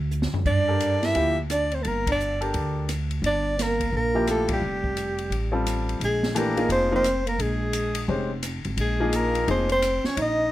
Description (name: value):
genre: modal jazz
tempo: 173 BPM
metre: 4/4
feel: swing 63% on 8ths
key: G dorian, Bb dorian from 6.0 s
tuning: A4 = 441 Hz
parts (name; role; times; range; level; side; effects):
- upright bass; bass; 0.0-10.5 s; F1 to G2; -28 LUFS; equal; none
- open jazz drum kit; drums; 0.1-10.3 s; crash cymbal, hi-hat, kick drum, ride cymbal, rim click, snare drum, toms; -31 LUFS; right 1 dB; none
- warm soprano saxophone; melody; 0.5-10.5 s; G4 to E5; -25 LUFS; equal; none
- mellow trombone; second line; 0.5-10.5 s; G3 to E4; -30 LUFS; right 3 dB; none
- clear baby grand piano; accompaniment; 0.7-9.7 s; E3 to C5; -27 LUFS; left 2 dB; none
room: little or no reverb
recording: close, detailed microphones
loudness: -22 LUFS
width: side -14 dB against mid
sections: 0.0-6.0 A section; 6.0-10.5 B section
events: drum fill 0.1-0.5; band accent 2.0, 4.5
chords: 0.0 Gm9; 4.6 Fadd9; 6.0 Bb9sus4